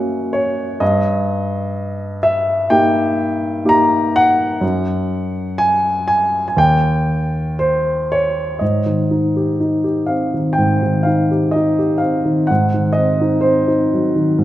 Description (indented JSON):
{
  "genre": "classical, lyrical solo piano",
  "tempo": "62 BPM",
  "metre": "4/4",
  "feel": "rubato",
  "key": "Ab major from 8.6 s",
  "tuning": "A4 = 442 Hz",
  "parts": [
    { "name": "dark grand piano", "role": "solo", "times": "0.0-14.4 s", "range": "D#2 to A#5", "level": "-14 LUFS", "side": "equal", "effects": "none" }
  ],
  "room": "wet scoring stage reverb, RT60 1.6 s",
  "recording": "none",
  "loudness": "-14 LUFS",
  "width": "side -14 dB against mid",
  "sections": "0.0-8.6 A section; 8.6-14.4 B section",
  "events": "none",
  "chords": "0.0 F#; 0.8 D#/G; 4.6 N.C.; 8.6 Abmaj7; 12.5 Ab7"
}